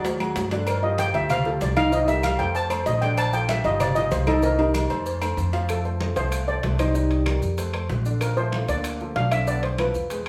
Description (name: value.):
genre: Afro-Cuban jazz.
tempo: 191 BPM.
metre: 4/4.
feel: straight.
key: F major from 5.7 s.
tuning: A4 = 440 Hz.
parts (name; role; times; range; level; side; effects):
steel pan; melody; 0.0-10.2 s; Eb4 to A5; -27 LUFS; equal; none.
warm baby grand piano; accompaniment; 0.0-10.3 s; D3 to F5; -31 LUFS; equal; none.
upright bass; bass; 0.0-10.3 s; G1 to G2; -28 LUFS; equal; none.
congas; percussion; 0.0-10.3 s; none; -36 LUFS; equal; none.
cowbell and bongos; percussion; 0.0-10.3 s; none; -40 LUFS; equal; none.
timbales and agogo bells; percussion; 0.0-10.3 s; none; -35 LUFS; equal; none.
maracas; percussion; 0.1-10.3 s; none; -46 LUFS; equal; none.
claves; percussion; 0.2-10.3 s; none; -41 LUFS; equal; none.
growling trombone; second line; 5.7-10.1 s; F3 to D4; -37 LUFS; equal; none.
room: wet large studio reverb, RT60 0.8 s.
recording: band playing live in one room.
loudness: -23 LUFS.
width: mono.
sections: 0.0-5.7 A section; 5.7-10.3 B section.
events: drum fill 0.0-0.7, 5.2-5.7; steel pan solo 0.0-5.7.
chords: 0.0 Ab5; 0.7 G5; 1.9 Cm7; 2.5 F; 3.2 Bbmaj7; 3.8 F13/G; 4.4 Cm7; 5.1 F; 6.9 Cm7; 7.6 F; 8.2 Bbmaj7; 9.5 Bm7b5.